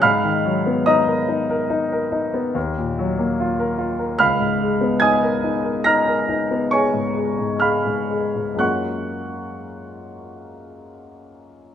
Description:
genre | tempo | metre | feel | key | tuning
classical, impressionist solo piano | 57-74 BPM | 5/4 | rubato | F# major | A4 = 442 Hz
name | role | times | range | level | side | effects
clear concert grand piano | solo | 0.0-11.7 s | C#2 to A#6 | -18 LUFS | equal | none
room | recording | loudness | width
wet large studio reverb, RT60 1.3 s | lossy compression artefacts | -18 LUFS | side -9 dB against mid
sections
0.0-11.7 A section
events
none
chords
0.0 G#m9; 2.6 D#madd9; 4.2 C#13; 8.6 F#maj9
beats
| 0.04 0.88 1.70 2.56 3.39 | 4.20 5.03 5.88 6.73 7.63 | 8.61 9.64 10.68 11.73

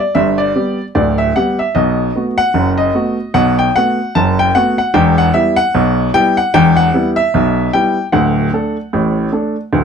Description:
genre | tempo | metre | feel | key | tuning
ragtime piano | 75 BPM | 2/4 | swing 58% on 16ths | unclear | A4 = 440 Hz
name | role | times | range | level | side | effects
warm upright piano | solo | 0.0-9.8 s | D1 to A5 | -11 LUFS | equal | none
room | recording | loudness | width
light reverb | close, detailed microphones | -11 LUFS | side -6 dB against mid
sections
0.0-9.8 A section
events
none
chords
0.0 G; 1.7 B5; 4.9 Em; 8.1 D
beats
| 0.15 0.95 | 1.75 2.54 | 3.34 4.14 | 4.93 5.73 | 6.53 7.33 | 8.13 8.93 | 9.74

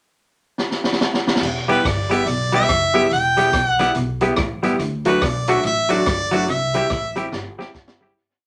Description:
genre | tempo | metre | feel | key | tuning
ska | 142 BPM | 4/4 | swing 62% on 8ths | E minor | A4 = 440 Hz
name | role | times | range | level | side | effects
swinging big-band drum kit | drums | 0.6-8.0 s | crash cymbal, hi-hat, kick drum, rim click, snare drum | -26 LUFS | equal | dub echo
clean electric guitar | riff | 1.4-7.9 s | E2 to D3 | -33 LUFS | equal | none
upright bass | bass | 1.4-8.1 s | E1 to D2 | -30 LUFS | equal | none
clear harmonica | melody | 1.7-7.3 s | B4 to G5 | -22 LUFS | equal | none
semi-hollow electric guitar | accompaniment | 1.7-8.1 s | F#3 to G4 | -25 LUFS | equal | dub echo
warm upright piano | stabs | 1.7-8.1 s | F#3 to G4 | -25 LUFS | equal | none
room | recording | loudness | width
wet studio ambience, RT60 0.5 s | none | -19 LUFS | mono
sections
0.0-1.4 pickup bar; 1.4-8.2 head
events
drum fill 0.6-1.4, 7.3-8.2; fade-out 6.5-8.2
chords
0.0 N.C.; 1.4 Em; 4.8 D; 6.5 C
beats
0.16 0.58 1.00 | 1.42 1.85 2.27 2.69 | 3.11 3.53 3.95 4.38 | 4.80 5.22 5.64 6.06 | 6.48 6.90 7.32 7.74

